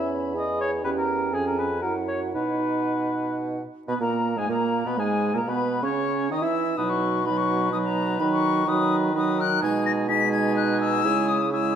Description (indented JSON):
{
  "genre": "quick classical-period movement for wind quintet",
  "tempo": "125 BPM",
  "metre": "3/4",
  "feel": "rubato",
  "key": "B major",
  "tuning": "A4 = 440 Hz",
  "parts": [
    { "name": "silver concert flute", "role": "melody", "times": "0.0-11.8 s", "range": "F#5 to B6", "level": "-28 LUFS", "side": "left 8 dB", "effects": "none" },
    { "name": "mellow oboe", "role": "second line", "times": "0.0-11.8 s", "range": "G#4 to E5", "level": "-30 LUFS", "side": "left 2 dB", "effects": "none" },
    { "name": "clear clarinet", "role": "accompaniment", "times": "0.0-11.8 s", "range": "G#3 to E4", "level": "-28 LUFS", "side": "right 7 dB", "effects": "none" },
    { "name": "warm French horn", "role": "accompaniment", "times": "0.0-11.8 s", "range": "F#3 to G#4", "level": "-29 LUFS", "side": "right 1 dB", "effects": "none" },
    { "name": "warm bassoon", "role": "bass", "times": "0.0-11.8 s", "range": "E2 to E3", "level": "-29 LUFS", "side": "right 2 dB", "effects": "none" }
  ],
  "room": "wet recital hall reverb, RT60 1.7 s",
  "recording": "none",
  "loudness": "-22 LUFS",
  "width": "side -8 dB against mid",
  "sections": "0.0-3.9 A section; 3.9-11.8 A section",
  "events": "none",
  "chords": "0.0 C#m7/E; 0.8 C#dim/E; 1.3 C#7/E#; 1.8 F#7; 2.3 B; 3.9 G#madd9; 5.4 C#m9; 6.8 B; 8.2 B/D#; 9.6 G#m/B; 11.0 C#m"
}